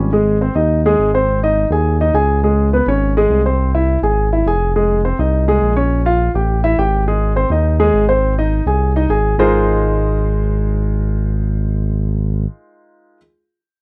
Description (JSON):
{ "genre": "Afro-Cuban jazz", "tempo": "207 BPM", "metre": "4/4", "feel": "straight", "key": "Ab major", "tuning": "A4 = 441 Hz", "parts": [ { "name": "warm grand piano", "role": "accompaniment", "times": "0.0-13.2 s", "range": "Ab3 to Ab5", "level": "-18 LUFS", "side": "equal", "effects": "none" }, { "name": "smooth synth bass", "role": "bass", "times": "0.0-12.5 s", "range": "F1 to Eb2", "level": "-19 LUFS", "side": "equal", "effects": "none" } ], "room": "little or no reverb", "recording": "dry, close 1970s-style studio recording", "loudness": "-16 LUFS", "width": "mono", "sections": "0.1-9.4 A section; 9.4-11.7 B section", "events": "none", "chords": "0.1 Ab; 2.4 Db5; 3.6 Caug; 4.8 Fm7; 5.9 Bbm; 6.5 A5; 7.1 Ab; 9.4 Ab69" }